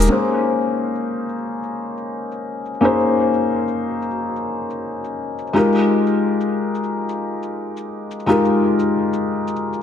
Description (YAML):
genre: liquid drum and bass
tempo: 176 BPM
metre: 4/4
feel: straight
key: unclear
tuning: A4 = 441 Hz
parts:
  - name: felt-muted upright piano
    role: accompaniment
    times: 0.0-9.8 s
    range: Ab3 to C5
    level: -18 LUFS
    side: left 2 dB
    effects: low-pass filter, dub echo
  - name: shaker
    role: drums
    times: 0.0-9.8 s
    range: none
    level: -34 LUFS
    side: right 1 dB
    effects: low-pass filter on hats, low-pass filter on cymbals, low-pass filter on perc, low-pass filter on snare
room: moderate plate reverb, RT60 2.0 s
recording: dense, heavily limited modern master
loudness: -18 LUFS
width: side -8 dB against mid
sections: 0.1-9.8 A section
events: filter sweep on felt piano 0.1-9.8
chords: 0.1 Bbm11; 5.6 Fm11